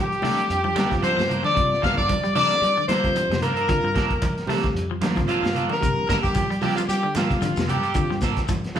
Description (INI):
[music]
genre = afrobeat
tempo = 113 BPM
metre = 4/4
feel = swing 56% on 16ths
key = G minor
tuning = A4 = 440 Hz
[part]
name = warm horn section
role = melody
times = 0.0-8.2 s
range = F4 to F5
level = -23 LUFS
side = left 2 dB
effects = none
[part]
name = clear trumpet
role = second line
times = 0.0-8.2 s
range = F4 to F5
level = -32 LUFS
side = right 3 dB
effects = none
[part]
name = electric guitar at the edge of break-up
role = arpeggios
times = 0.0-8.8 s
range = C3 to A3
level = -31 LUFS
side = left 5 dB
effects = none
[part]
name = crunchy breakbeat drum kit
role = drums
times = 0.1-8.8 s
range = hi-hat, kick drum, snare drum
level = -27 LUFS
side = equal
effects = none
[part]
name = reed electric piano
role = accompaniment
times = 0.2-8.8 s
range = G3 to G4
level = -32 LUFS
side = right 2 dB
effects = fast tremolo
[part]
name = electric guitar at the edge of break-up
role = stabs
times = 0.2-8.8 s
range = F3 to A4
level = -30 LUFS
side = right 6 dB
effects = none
[part]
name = congas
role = percussion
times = 0.2-8.8 s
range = none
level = -30 LUFS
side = right 1 dB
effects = none
[part]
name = fingered electric bass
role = bass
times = 0.5-8.3 s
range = F2 to G3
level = -29 LUFS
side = equal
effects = none
[part]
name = shekere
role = percussion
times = 5.8-8.8 s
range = none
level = -35 LUFS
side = left 1 dB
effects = none
[sound]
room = wet large studio reverb, RT60 1.1 s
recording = band playing live in one room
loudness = -20 LUFS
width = side -9 dB against mid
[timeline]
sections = 0.0-8.8 A section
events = none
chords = 0.0 Gm9